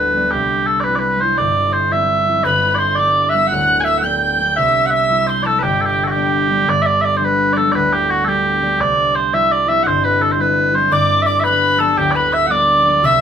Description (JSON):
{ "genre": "celtic folk, Celtic jig", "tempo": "114 BPM (dotted quarters)", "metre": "6/8", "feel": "straight", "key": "G major", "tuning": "A4 = 440 Hz", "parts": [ { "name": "mellow small bagpipes", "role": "melody", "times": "0.0-13.2 s", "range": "F#4 to Ab5", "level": "-14 LUFS", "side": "right 1 dB", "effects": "none" }, { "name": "concert harp", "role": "accompaniment", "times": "0.0-13.2 s", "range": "D1 to E4", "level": "-20 LUFS", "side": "left 1 dB", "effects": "none" }, { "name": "tin whistle", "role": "second line", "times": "2.4-6.3, 10.9-13.2 s", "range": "G5 to G6", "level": "-21 LUFS", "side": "left 3 dB", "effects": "none" } ], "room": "moderate studio reverb, RT60 0.7 s", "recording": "band playing live in one room", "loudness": "-13 LUFS", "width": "side -8 dB against mid", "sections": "0.0-6.7 A section; 6.7-13.2 A section", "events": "none", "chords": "0.3 C; 2.5 G; 4.6 C; 5.6 G; 8.8 C; 10.9 G" }